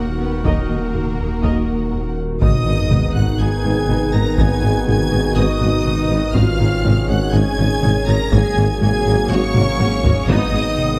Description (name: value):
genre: cinematic, hybrid orchestral and electronic film score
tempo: 122 BPM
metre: 4/4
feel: straight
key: G# dorian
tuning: A4 = 440 Hz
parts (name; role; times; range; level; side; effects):
- warm symphonic violin section; melody; 0.0-11.0 s; F#5 to A#6; -30 LUFS; equal; none
- rich symphonic violin section; second line; 0.0-11.0 s; A#4 to A#5; -31 LUFS; equal; none
- rich symphonic viola section; accompaniment; 0.0-10.6 s; G#3 to D#5; -32 LUFS; equal; none
- warbly tape-like pad; sustained chords; 0.0-11.0 s; D#3 to C#5; -28 LUFS; equal; chorus, built-in reverb
- mellow tuba; bass; 0.0-10.6 s; G#1 to D#2; -26 LUFS; equal; none
- rich chamber double bass section; bass; 0.0-10.6 s; G#1 to D#2; -24 LUFS; equal; none
- rich symphonic cello section; bass; 0.0-10.6 s; G#2 to B3; -27 LUFS; equal; none
- detuned saw bass; bass; 0.0-11.0 s; D#1 to G#1; -26 LUFS; equal; chorus
- warm French horn section; sustained chords; 0.4-11.0 s; C#4 to D#5; -28 LUFS; equal; none
- mellow trombone section; sustained chords; 0.5-11.0 s; D#3 to C#4; -28 LUFS; equal; none
- taiko ensemble; drums; 0.5-11.0 s; none; -25 LUFS; equal; none
- sub drop; sound effects; 2.4-4.4 s; none; -27 LUFS; equal; none
room: moderate scoring stage reverb, RT60 1.5 s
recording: none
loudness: -17 LUFS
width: mono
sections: 0.0-2.4 A section; 2.4-11.0 B section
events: impact 2.4-4.4; drum fill 9.5-10.3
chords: 0.0 D#m; 2.4 G#m; 4.4 B6/G#; 6.4 C#add9/G#; 8.3 F#add9/G#; 10.3 G#m